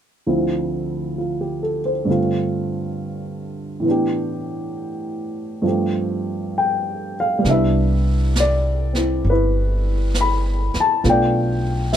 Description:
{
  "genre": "jazz ballad",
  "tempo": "67 BPM",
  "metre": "4/4",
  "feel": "swing 68% on 8ths",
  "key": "C major",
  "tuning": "A4 = 440 Hz",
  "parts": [
    { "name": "dark upright piano", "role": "accompaniment", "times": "0.3-12.0 s", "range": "D2 to B5", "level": "-20 LUFS", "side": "equal", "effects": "none" },
    { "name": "upright bass", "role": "bass", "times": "7.4-12.0 s", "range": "G1 to C2", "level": "-19 LUFS", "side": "equal", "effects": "none" },
    { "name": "jazz brush drum kit", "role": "drums", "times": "7.4-12.0 s", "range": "brushed snare drum, hi-hat, snare drum", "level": "-28 LUFS", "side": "right 2 dB", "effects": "none" }
  ],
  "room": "little or no reverb",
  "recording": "close, detailed microphones",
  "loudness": "-18 LUFS",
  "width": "side -10 dB against mid",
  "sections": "0.3-7.4 A section; 7.4-12.0 B section",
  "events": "none",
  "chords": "0.3 Dm9; 2.1 G7sus4; 3.9 A7sus4; 5.6 G7sus4; 7.4 Cmaj9; 11.0 Bm7b5"
}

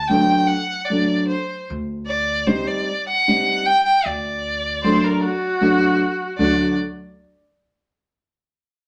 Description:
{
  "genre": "klezmer",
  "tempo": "77 BPM",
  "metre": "3/4",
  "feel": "straight",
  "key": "unclear",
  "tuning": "A4 = 440 Hz",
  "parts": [
    { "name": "clear violin", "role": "melody", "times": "0.0-6.7 s", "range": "C5 to G5", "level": "-23 LUFS", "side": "equal", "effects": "none" },
    { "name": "upright bass", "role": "bass", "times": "0.0-6.7 s", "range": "D2", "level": "-34 LUFS", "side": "equal", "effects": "none" },
    { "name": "dark upright piano", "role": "accompaniment", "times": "0.1-6.7 s", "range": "F#3 to Eb4", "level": "-22 LUFS", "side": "equal", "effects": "none" },
    { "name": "rich erhu", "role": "second line", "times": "4.8-6.7 s", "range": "F#4 to C5", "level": "-24 LUFS", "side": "equal", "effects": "none" }
  ],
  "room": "wet club reverb, RT60 0.7 s",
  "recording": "none",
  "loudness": "-20 LUFS",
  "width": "mono",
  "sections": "0.0-6.4 A section; 6.4-8.7 B section",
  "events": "speeding up 0.0-8.7",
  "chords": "0.0 D; 1.7 Cm/D; 4.1 D"
}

